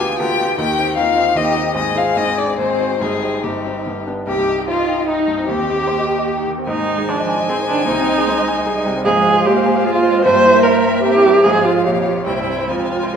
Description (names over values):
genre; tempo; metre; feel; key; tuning
quick classical-period movement for piano quintet; 137-155 BPM; 3/4; rubato; C minor, F minor from 9.1 s; A4 = 440 Hz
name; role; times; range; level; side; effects
rich violin; melody; 0.0-13.2 s; Eb4 to Ab5; -21 LUFS; left 6 dB; none
warm cello; second line; 0.0-13.2 s; Eb3 to Ab4; -24 LUFS; right 5 dB; none
warm violin; second line; 0.0-13.2 s; Eb4 to Db5; -24 LUFS; left 3 dB; none
bright grand piano; accompaniment; 0.0-13.2 s; G1 to Bb5; -21 LUFS; equal; none
rich viola; accompaniment; 0.0-13.2 s; B3 to C5; -17 LUFS; right 2 dB; none
room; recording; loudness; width
wet recital hall reverb, RT60 1.5 s; recorded in a church or concert hall; -14 LUFS; side -7 dB against mid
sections
0.0-4.3 A section; 4.3-13.2 B section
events
none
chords
0.0 G7/D; 0.6 Cm/Eb; 1.8 Ab; 2.6 Ab7; 3.0 Cm/G; 3.9 G; 4.3 Cm; 5.5 Cm/Eb; 6.7 Ab; 7.9 Ab/C; 9.1 Fm/Ab; 10.3 C7/G; 11.4 Fm/Ab; 11.9 Gm7b5/Bb; 12.3 C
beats
0.20 | 0.58 0.97 1.36 | 1.76 2.17 2.59 | 3.01 3.44 3.87 | 4.28 4.69 5.09 | 5.49 5.89 6.29 | 6.68 7.08 7.49 | 7.88 8.27 8.67 | 9.06 9.46 9.86 | 10.25 10.65 11.05 | 11.45 11.85 12.26 | 12.69 13.13